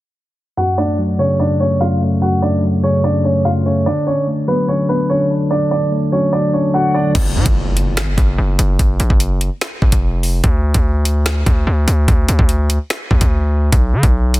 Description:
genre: hip hop, drill.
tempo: 146 BPM.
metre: 4/4.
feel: half-time.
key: F# harmonic minor.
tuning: A4 = 440 Hz.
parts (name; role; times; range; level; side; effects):
dark baby grand piano; melody; 0.6-7.1 s; B3 to F#5; -17 LUFS; equal; low-pass filter.
mellow tine electric piano; accompaniment; 0.6-7.2 s; F#2 to D4; -16 LUFS; equal; none.
distorted 808-style bass; bass; 7.2-14.4 s; E#1 to D3; -15 LUFS; equal; distortion.
drill drum kit; drums; 7.2-14.4 s; crash cymbal, finger snaps, hi-hat, kick drum, snare drum; -15 LUFS; equal; none.
impact; sound effects; 7.2-8.8 s; none; -24 LUFS; equal; none.
room: digital ambience.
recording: dense, heavily limited modern master, low-pass filter.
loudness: -13 LUFS.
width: side -17 dB against mid.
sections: 0.6-7.1 A section; 7.1-14.4 B section.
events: filter sweep 0.6-7.1; impact 7.1-8.8.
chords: 0.6 F#m; 3.9 D; 7.1 N.C.; 13.7 Bm.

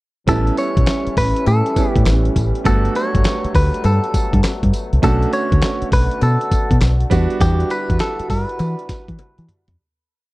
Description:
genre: R&B, new jack swing.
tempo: 101 BPM.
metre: 4/4.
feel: swing 65% on 16ths.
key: unclear.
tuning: A4 = 440 Hz.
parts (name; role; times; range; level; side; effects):
direct-recorded clean electric guitar; melody; 0.3-9.4 s; G4 to C#5; -22 LUFS; equal; spring reverb.
bright grand piano; accompaniment; 0.3-9.8 s; G3 to F#4; -24 LUFS; right 4 dB; none.
mellow French horn section; sustained chords; 0.3-9.8 s; D3 to F#4; -27 LUFS; left 2 dB; none.
deep dub fingered electric bass; bass; 0.3-9.8 s; G1 to E3; -16 LUFS; equal; none.
dusty soul sampler-style drum kit; drums; 0.3-9.8 s; handclaps, hi-hat, kick drum, snare drum, tambourine, toms; -19 LUFS; equal; vintage 12-bit sampler grit.
cowbell; percussion; 0.3-9.4 s; none; -33 LUFS; left 9 dB; none.
room: little or no reverb.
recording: dry, close 1970s-style studio recording.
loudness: -14 LUFS.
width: side -20 dB against mid.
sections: 0.3-9.8 chorus.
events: fade-out 7.4-9.8; drum fill 9.2-9.8.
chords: 0.3 A7; 2.7 Gmaj9; 5.0 Bm9; 7.1 Em9.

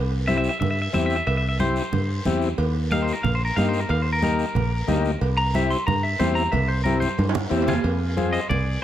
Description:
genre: latin, cumbia.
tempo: 182 BPM.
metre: 4/4.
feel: straight.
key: unclear.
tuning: A4 = 440 Hz.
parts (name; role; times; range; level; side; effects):
fingered electric bass; bass; 0.0-8.8 s; Bb1 to G2; -24 LUFS; equal; none.
clean electric guitar; melody; 0.3-8.8 s; F4 to C6; -26 LUFS; equal; spring reverb.
combo organ; accompaniment; 0.3-8.8 s; Bb3 to Ab4; -26 LUFS; left 5 dB; none.
congas; percussion; 0.3-8.7 s; none; -29 LUFS; right 3 dB; none.
guiro; percussion; 0.3-8.8 s; none; -38 LUFS; left 1 dB; none.
cowbell and timbales; percussion; 0.6-8.7 s; none; -31 LUFS; right 4 dB; none.
room: little or no reverb.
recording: close, detailed microphones.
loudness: -20 LUFS.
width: side -11 dB against mid.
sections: 0.0-7.8 A section.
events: clean electric guitar solo 0.0-7.8; drum fill 7.0-7.8.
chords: 0.0 C; 2.6 Eb; 5.2 C; 7.8 Fm.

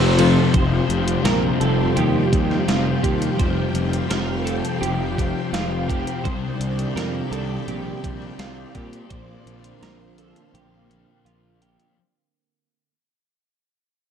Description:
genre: rock, shoegaze and dream pop.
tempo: 84 BPM.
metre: 4/4.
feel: straight.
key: unclear.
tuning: A4 = 440 Hz.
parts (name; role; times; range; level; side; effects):
string machine, violins; sustained chords; 0.0-11.9 s; F3 to G5; -29 LUFS; equal; ensemble chorus.
twelve-string electric guitar; arpeggios; 0.0-12.0 s; F4 to C5; -30 LUFS; right 10 dB; ensemble chorus, slapback echo.
cranked stack guitar; riff; 0.0-0.5 s; F2 to C4; -20 LUFS; left 2 dB; overdrive.
electric guitar through a small old amp; riff; 0.0-12.0 s; Bb2 to G4; -30 LUFS; right 13 dB; reverse reverb.
thick fuzz guitar; riff; 0.0-12.0 s; F2 to C4; -25 LUFS; left 8 dB; distortion, wide subtle chorus.
fuzz fingered electric bass; bass; 0.0-11.8 s; F1 to Bb2; -24 LUFS; equal; overdrive.
gated 80s digital drum machine; drums; 0.2-12.0 s; hi-hat, kick drum, ride cymbal, snare drum; -24 LUFS; equal; gated reverb, gated reverb snare.
room: light reverb, digital ambience.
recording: none.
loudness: -19 LUFS.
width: side -8 dB against mid.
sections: 0.5-12.0 A section.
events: break 0.0-0.5, 10.5-12.0; fade-out 0.5-12.0.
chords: 0.0 Fsus2; 6.2 Cmadd9; 9.1 Bbadd9.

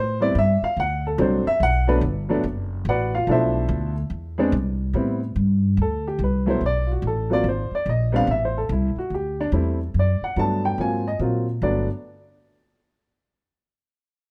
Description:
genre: jazz piano trio.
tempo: 144 BPM.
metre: 4/4.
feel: swing 65% on 8ths.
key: G major.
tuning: A4 = 440 Hz.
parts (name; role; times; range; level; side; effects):
warm upright piano; melody; 0.0-11.9 s; B2 to A5; -25 LUFS; equal; plate reverb.
upright bass; bass; 0.0-11.9 s; F#1 to Bb2; -25 LUFS; equal; none.
room: light reverb.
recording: close, detailed microphones.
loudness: -22 LUFS.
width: mono.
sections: 0.0-4.9 A section; 4.9-11.6 B section; 11.6-13.3 C section.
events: none.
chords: 0.0 Am7; 0.8 D7; 1.6 Gmaj7; 3.3 Bm7b5; 4.1 E(#5, no3); 4.9 Am7; 5.8 D5; 6.6 B5; 7.4 Abadd9; 8.3 Am; 9.1 D9sus4; 9.9 Bm7; 10.8 Ab13; 11.6 G5.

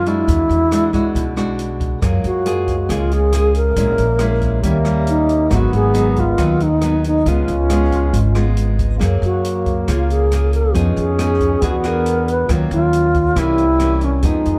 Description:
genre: bossa nova.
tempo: 138 BPM.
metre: 4/4.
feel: straight.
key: unclear.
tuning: A4 = 440 Hz.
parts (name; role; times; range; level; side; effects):
mellow wooden-headed alto flute; melody; 0.0-14.6 s; Db4 to B4; -21 LUFS; equal; none.
nylon-string guitar; accompaniment; 0.0-14.6 s; F#2 to Ab4; -26 LUFS; equal; none.
upright bass; bass; 0.0-14.6 s; Ab1 to F#2; -21 LUFS; equal; none.
open jazz drum kit; drums; 0.1-14.6 s; hi-hat, kick drum, rim click; -27 LUFS; equal; none.
mellow trombone; second line; 2.0-14.6 s; G3 to Db4; -28 LUFS; equal; none.
vibraphone with soft mallets; accompaniment; 2.0-14.6 s; B3 to F5; -31 LUFS; equal; none.
room: light reverb.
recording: dark, warm production.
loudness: -16 LUFS.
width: mono.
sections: 0.0-14.6 A section.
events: none.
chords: 0.3 E9; 2.0 Gbmaj9; 3.8 Bbm7b5; 4.6 Eb7b9; 5.5 Abm7; 7.3 Db7; 9.0 Gbmaj9; 10.7 Fm7b5; 11.6 E9; 12.5 Ebm9; 13.4 C7b9.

